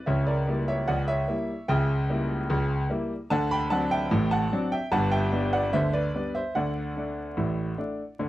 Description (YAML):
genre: ragtime piano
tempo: 74 BPM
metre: 2/4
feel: straight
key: unclear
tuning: A4 = 440 Hz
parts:
  - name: clear grand piano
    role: solo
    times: 0.0-8.3 s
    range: G1 to B5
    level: -24 LUFS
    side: equal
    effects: none
room: light reverb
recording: dry, close 1970s-style studio recording, vinyl crackle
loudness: -24 LUFS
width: side -15 dB against mid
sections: 0.0-8.3 A section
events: none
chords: 0.1 C#dim7; 3.3 D7; 4.9 G; 6.5 D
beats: | 0.07 0.88 | 1.68 2.49 | 3.30 4.11 | 4.92 5.73 | 6.54 7.36 | 8.18